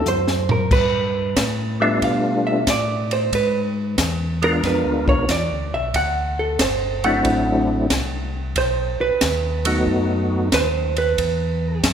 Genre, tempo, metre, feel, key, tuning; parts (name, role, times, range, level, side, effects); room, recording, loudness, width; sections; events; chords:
soul jazz organ trio; 92 BPM; 4/4; swing 68% on 8ths; D mixolydian; A4 = 440 Hz
percussive tonewheel organ; melody; 0.0-10.5 s; F#3 to Bb4; -21 LUFS; left 1 dB; slow rotary speaker, chorus vibrato
vintage hollow-body jazz guitar; accompaniment; 0.0-11.8 s; A4 to F#5; -22 LUFS; right 3 dB
mellow tonewheel organ; bass; 0.0-11.9 s; G1 to B2; -24 LUFS; equal; chorus vibrato, slow rotary speaker
compact cocktail drum kit; drums; 0.1-11.9 s; crash cymbal, hi-hat, kick drum, ride cymbal, snare drum, toms; -24 LUFS; equal
moderate concert hall reverb, RT60 2.1 s; recorded in a church or concert hall; -18 LUFS; side -8 dB against mid
0.0-11.9 A section
hollow-body jazz guitar solo 0.0-11.9; drum fill 0.1-0.7
0.0 D7 (rootless); 0.7 G9; 3.3 G#dim7; 5.9 D9; 8.6 B7; 11.2 E5